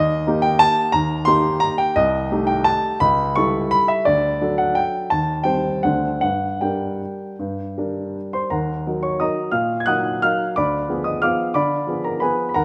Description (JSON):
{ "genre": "classical, piano waltz", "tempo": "153-192 BPM", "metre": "3/4", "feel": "rubato", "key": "G minor, Eb minor from 8.5 s", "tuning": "A4 = 439 Hz", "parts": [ { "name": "warm grand piano", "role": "solo", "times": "0.0-12.6 s", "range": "C2 to Ab6", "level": "-20 LUFS", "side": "equal", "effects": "none" } ], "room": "moderate recital hall reverb, RT60 1.9 s", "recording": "none", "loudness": "-20 LUFS", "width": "mono", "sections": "0.0-8.5 A section; 8.5-12.6 B section", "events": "none", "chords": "0.0 Eb; 2.0 Am7b5/C; 3.0 A7/C#; 4.1 D; 5.1 Cm/Eb; 5.8 D7; 6.2 Gm; 8.5 Ebm; 10.6 Ddim7", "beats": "0.27 0.61 | 0.94 1.28 1.63 | 1.97 2.31 2.66 | 3.00 3.35 3.71 | 4.06 4.41 4.76 | 5.12 5.46 5.84 | 6.22 6.61 7.00 | 7.39 7.77 8.15 | 8.52 8.86 9.21 | 9.54 9.87 10.22 | 10.55 10.88 11.23 | 11.55 11.87 12.21 | 12.55" }